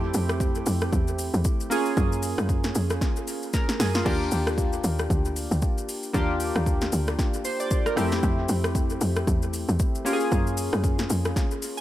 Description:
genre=amapiano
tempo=115 BPM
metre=4/4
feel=swing 58% on 16ths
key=unclear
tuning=A4 = 440 Hz
part: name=warm analog keys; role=accompaniment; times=0.0-11.8 s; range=A3 to Ab5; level=-28 LUFS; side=equal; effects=chorus
part: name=tight log drum bass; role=bass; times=0.0-11.3 s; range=D2 to Gb2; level=-26 LUFS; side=equal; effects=none
part: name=deep house drum kit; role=drums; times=0.1-11.8 s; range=crash cymbal, hi-hat, kick drum, rim click, shaker, snare drum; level=-26 LUFS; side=equal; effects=overdrive, dub echo
room=little or no reverb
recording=echo-heavy mix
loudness=-22 LUFS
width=side -14 dB against mid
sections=0.0-11.8 A section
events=drum fill 3.5-4.1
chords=0.0 Fmaj9; 1.7 Gbmaj9; 4.1 Ebmaj9; 8.0 Fmaj9; 10.1 Gbmaj9

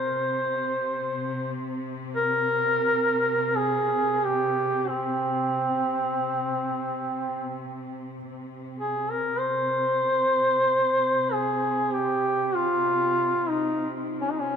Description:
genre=caucasian folk, Caucasian lament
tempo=free time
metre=none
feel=none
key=unclear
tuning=A4 = 440 Hz
part: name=warm duduk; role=melody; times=0.0-14.6 s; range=C4 to C5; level=-24 LUFS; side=equal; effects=none
part: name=rich studio cello section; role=drone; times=0.0-14.6 s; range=C3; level=-33 LUFS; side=left 1 dB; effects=none
room=wet cathedral reverb, RT60 4.4 s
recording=minimal, uncompressed stereo recording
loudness=-23 LUFS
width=side -7 dB against mid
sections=0.0-8.3 A section; 8.3-14.6 A section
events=none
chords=none

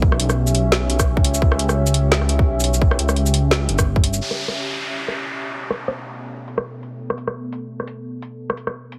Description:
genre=half-time drum and bass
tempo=172 BPM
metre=4/4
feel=swing 56% on 16ths, half-time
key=B minor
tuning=A4 = 441 Hz
part: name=deep dark ambient pad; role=sustained chords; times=0.0-9.0 s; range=B3 to E5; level=-30 LUFS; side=equal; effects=chorus, built-in reverb, sidechain pumping
part: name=dark detuned saw bass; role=bass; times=0.0-4.2 s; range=G1 to C#2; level=-21 LUFS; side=equal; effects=none
part: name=electronic kick drum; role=drums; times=0.0-4.0 s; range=none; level=-19 LUFS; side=equal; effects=none
part: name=drum and bass drum kit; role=drums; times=0.1-9.0 s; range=hi-hat, rim click, shaker, snare drum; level=-24 LUFS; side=equal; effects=low-pass filter on snare, low-pass filter on hats, low-pass filter on perc, low-pass filter on room
part: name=downlifter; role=sound effects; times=4.2-7.0 s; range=none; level=-30 LUFS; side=equal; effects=none
room=light reverb, digital ambience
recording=heavily compressed radio sound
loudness=-20 LUFS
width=mono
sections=0.0-4.2 A section; 4.2-9.0 B section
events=drop 0.0-4.2; filter sweep on ambient pad 4.2-9.0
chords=0.0 C#dim; 4.2 Bm7

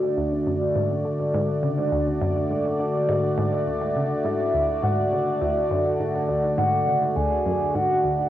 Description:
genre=ambient, sequencer-driven space music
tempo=103 BPM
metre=4/4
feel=straight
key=D lydian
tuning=A4 = 441 Hz
part: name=sweeping resonant pad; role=sustained chords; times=0.0-8.3 s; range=D3 to D5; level=-23 LUFS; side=equal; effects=chorus, phaser, cassette tape, plate reverb
part: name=analog pluck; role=riff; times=0.0-8.2 s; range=D2 to D3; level=-28 LUFS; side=equal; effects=chorus, phaser, cassette tape, tape echo
part: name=soft octave-layered synth lead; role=melody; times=4.2-8.3 s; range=D5 to G#5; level=-24 LUFS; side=equal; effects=chorus, phaser, cassette tape, plate reverb, tape echo
room=wet studio reverb, RT60 0.6 s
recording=home recording on cassette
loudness=-21 LUFS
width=side -12 dB against mid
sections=0.0-8.3 A section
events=none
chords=0.0 D

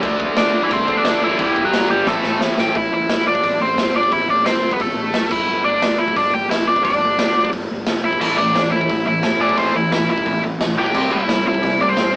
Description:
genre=punk rock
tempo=176 BPM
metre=4/4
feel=straight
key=A minor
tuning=A4 = 441 Hz
part: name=biting overdriven guitar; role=riff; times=0.0-2.8, 8.2-12.2 s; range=G2 to D4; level=-23 LUFS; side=right 1 dB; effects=none
part: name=distorted electric guitar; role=riff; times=0.0-2.8, 8.2-12.2 s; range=G2 to D4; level=-24 LUFS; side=left 1 dB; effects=overdrive
part: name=fuzz picked electric bass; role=bass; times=0.0-12.2 s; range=E1 to E2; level=-28 LUFS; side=equal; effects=overdrive
part: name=raw garage drum kit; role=drums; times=0.0-12.1 s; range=crash cymbal, hi-hat, kick drum, snare drum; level=-21 LUFS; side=equal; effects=none
part: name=nasal lead guitar with a parked wah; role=melody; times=0.4-12.2 s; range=E3 to G5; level=-17 LUFS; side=equal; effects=overdrive
room=light reverb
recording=rough rehearsal-room recording, AM radio sound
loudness=-15 LUFS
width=side -27 dB against mid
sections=0.0-2.8 A section; 2.8-12.2 B section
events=drum fill 2.1-2.8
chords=0.0 D5; 1.4 G5; 2.1 A5; 2.8 Am; 5.3 G5; 8.2 A5; 10.9 C

